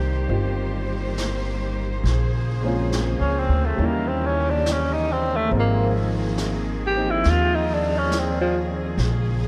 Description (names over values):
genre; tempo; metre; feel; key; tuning
jazz ballad; 69 BPM; 4/4; swing 68% on 8ths; Ab major; A4 = 443 Hz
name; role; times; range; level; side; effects
warm upright piano; accompaniment; 0.0-9.0 s; G3 to G4; -32 LUFS; equal; analog chorus
rich symphonic cello section; sustained chords; 0.0-9.5 s; Db3 to C5; -32 LUFS; equal; none
upright bass; bass; 0.0-9.5 s; G1 to Eb2; -26 LUFS; equal; none
vintage brush drum kit; drums; 0.3-9.5 s; brushed snare drum, hi-hat, snare drum; -37 LUFS; equal; none
breathy tenor saxophone; melody; 3.2-8.6 s; F3 to G4; -27 LUFS; equal; analog delay
room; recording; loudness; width
moderate plate reverb, RT60 3.5 s; dreamy mix soaked in reverb; -23 LUFS; mono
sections
0.0-9.5 A section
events
tenor saxophone solo 0.0-9.5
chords
0.0 Cm7; 2.0 Bbm9; 3.8 Eb7b9; 5.5 Ab69; 9.0 Bbm7